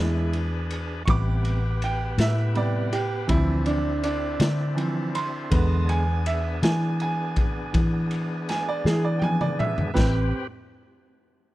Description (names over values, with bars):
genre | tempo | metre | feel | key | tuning
slow blues | 54 BPM (dotted quarters) | 12/8 | straight | A minor | A4 = 440 Hz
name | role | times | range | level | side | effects
bright baby grand piano | accompaniment | 0.0-10.3 s | C3 to D6 | -28 LUFS | right 3 dB | none
overdriven tonewheel organ | sustained chords | 0.0-10.5 s | B3 to A5 | -34 LUFS | left 1 dB | slow rotary speaker
vintage muted fingered electric bass | bass | 0.0-10.3 s | A1 to E3 | -25 LUFS | left 1 dB | none
raw garage drum kit | drums | 0.3-10.1 s | crash cymbal, kick drum, ride cymbal, snare drum, toms | -28 LUFS | left 1 dB | none
room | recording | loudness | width
studio reverb | none | -22 LUFS | side -16 dB against mid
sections
0.0-10.0 A section; 10.0-11.5 B section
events
grand piano solo 0.0-10.0; drum fill 8.9-10.0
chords
0.0 E7; 1.1 Am9; 3.3 Dm9; 5.5 E7; 10.0 Am9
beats
| 1.07 2.19 3.30 4.41 | 5.52 6.63 7.75 8.86 | 9.97